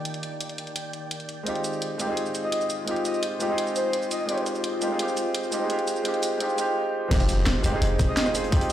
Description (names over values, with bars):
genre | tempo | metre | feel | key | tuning
liquid drum and bass | 170 BPM | 4/4 | straight | F dorian | A4 = 440 Hz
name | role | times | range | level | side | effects
warm baby grand piano | accompaniment | 0.0-8.7 s | Ab3 to Ab4 | -27 LUFS | right 1 dB | tape echo
glassy FM pad | sustained chords | 0.0-7.1 s | Eb3 to G5 | -34 LUFS | left 4 dB | ensemble chorus, built-in reverb, sidechain pumping
drum and bass drum kit | drums | 0.1-8.7 s | crash cymbal, hi-hat, rim click, shaker, snare drum | -31 LUFS | equal | none
breathy flute-like synth lead | melody | 2.4-4.4, 8.1-8.7 s | C5 to Eb5 | -30 LUFS | equal | chorus, tremolo, tape echo
long sustained 808-style bass | bass | 7.1-8.1 s | Eb1 to F1 | -24 LUFS | equal | none
crunchy breakbeat drum kit | drums | 7.1-8.7 s | hi-hat, snare drum | -37 LUFS | left 1 dB | high-pass filter on hats, high-pass filter on snare, high-pass filter on room
electronic kick drum | drums | 7.1-8.6 s | none | -22 LUFS | equal | none
impact | sound effects | 7.1-8.5 s | none | -29 LUFS | equal | none
room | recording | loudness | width
moderate digital room reverb, RT60 1.4 s | played on a big sound system in a bare room, stone room reverb, high-pass filter | -24 LUFS | side -11 dB against mid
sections
0.0-1.5 A section; 1.5-7.1 B section; 7.1-8.7 C section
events
build-up 1.5-7.1; drop 7.1-8.7; impact 7.1-8.5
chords
0.0 Ebmaj7; 1.5 Fm7